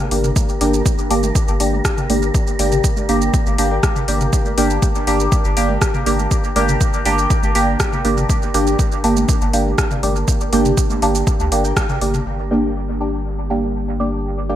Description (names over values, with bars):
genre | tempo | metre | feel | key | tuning
dub techno | 121 BPM | 4/4 | straight | G minor | A4 = 441 Hz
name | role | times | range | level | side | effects
wind-like tuned noise texture | texture | 0.0-12.3 s | Bb4 | -31 LUFS | right 4 dB | built-in reverb, sidechain pumping
deep mellow chord stab | stabs | 0.1-14.6 s | Bb3 to G4 | -19 LUFS | equal | chorus, phaser, sidechain pumping, dub echo
round analog bass | bass | 0.1-14.6 s | G1 to D2 | -21 LUFS | equal | sidechain pumping
deep house drum kit | drums | 0.1-12.2 s | hi-hat, rim click, shaker | -24 LUFS | right 1 dB | overdrive, low-pass filter on perc, studio reverb, low-pass filter on hats, low-pass filter on snare, gated reverb, dub echo
electronic toms and congas | percussion | 0.2-12.2 s | none | -28 LUFS | right 1 dB | sidechain pumping on toms, studio reverb, sidechain pumping on perc, gated reverb, dub echo
electronic kick drum | drums | 0.4-11.9 s | none | -19 LUFS | equal | overdrive, studio reverb
warbly dusty pluck | riff | 0.6-14.6 s | Bb4 to G5 | -32 LUFS | left 2 dB | none
airy breathy pad | sustained chords | 12.7-14.6 s | G3 to G4 | -30 LUFS | left 2 dB | chorus, sidechain pumping
room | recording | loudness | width
light reverb | bright 1980s-style digital production | -15 LUFS | side -11 dB against mid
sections
0.0-12.3 A section; 12.3-14.6 B section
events
band accent 11.8; filter sweep on analog synth pad 12.3-14.6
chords
0.0 Gm